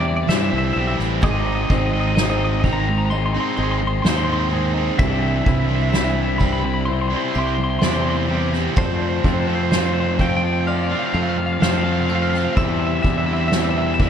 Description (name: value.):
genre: post-rock.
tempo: 63 BPM.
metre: 4/4.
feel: straight.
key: C major.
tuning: A4 = 440 Hz.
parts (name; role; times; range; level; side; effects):
twelve-string electric guitar; melody; 0.0-14.1 s; C5 to C6; -26 LUFS; equal; slapback echo.
pedal steel guitar; sustained chords; 0.0-14.1 s; D4 to C6; -36 LUFS; right 2 dB; none.
twangy electric guitar; arpeggios; 0.0-14.1 s; D3 to D5; -31 LUFS; left 2 dB; spring reverb, slapback echo.
vibraphone with hard mallets; arpeggios; 0.0-14.1 s; C5 to D6; -30 LUFS; right 7 dB; slapback echo.
distorted electric guitar; riff; 0.0-14.1 s; Ab2 to F4; -25 LUFS; left 12 dB; distortion.
distorted electric guitar; riff; 0.0-14.1 s; Ab2 to F4; -26 LUFS; right 11 dB; distortion.
growling fingered electric bass; bass; 0.0-14.1 s; Ab1 to G2; -22 LUFS; equal; overdrive.
soft-mallet drum kit; drums; 0.3-14.1 s; crash cymbal, kick drum, snare drum; -23 LUFS; equal; none.
room: light reverb, small room ambience.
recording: none.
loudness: -17 LUFS.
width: side -8 dB against mid.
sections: 0.0-14.1 A section.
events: none.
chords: 0.0 Cadd9/E; 1.2 Ab; 5.0 Cadd9; 8.8 F; 12.6 Cadd9/E.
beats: 0.28 | 1.22 2.16 3.10 4.05 | 4.99 5.94 6.88 7.83 | 8.77 9.72 10.67 11.62 | 12.57 13.52.